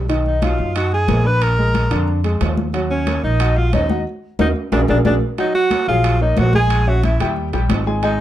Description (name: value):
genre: Afro-Cuban jazz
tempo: 182 BPM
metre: 4/4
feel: straight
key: Eb minor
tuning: A4 = 440 Hz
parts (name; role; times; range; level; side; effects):
- warm concert grand piano; accompaniment; 0.0-8.2 s; D3 to Ab5; -23 LUFS; equal; none
- upright bass; bass; 0.0-8.2 s; Ab1 to F#2; -18 LUFS; equal; none
- congas; percussion; 0.1-8.2 s; none; -24 LUFS; left 3 dB; none
- timbales; percussion; 0.1-8.2 s; none; -27 LUFS; right 6 dB; none
- bright alto saxophone; melody; 0.3-8.2 s; Db4 to B4; -20 LUFS; right 1 dB; none
- jazz flute; second line; 0.3-8.2 s; Db5 to B5; -26 LUFS; left 2 dB; none
room: light reverb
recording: dark, warm production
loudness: -15 LUFS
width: side -12 dB against mid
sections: 0.0-5.4 A section; 5.4-8.2 B section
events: drum fill 4.1-5.4; band accent 4.1-5.4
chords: 0.1 Bmaj7; 1.4 Bb7; 2.7 Ebm7; 4.7 Bbaug7; 5.4 Gbmaj13; 6.7 Bbm7b5; 7.4 Eb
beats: | 0.10 0.43 0.76 1.09 | 1.42 1.75 2.08 2.41 | 2.74 3.07 3.40 3.73 | 4.06 4.39 4.72 5.05 | 5.38 5.71 6.04 6.38 | 6.71 7.04 7.37 7.70 | 8.03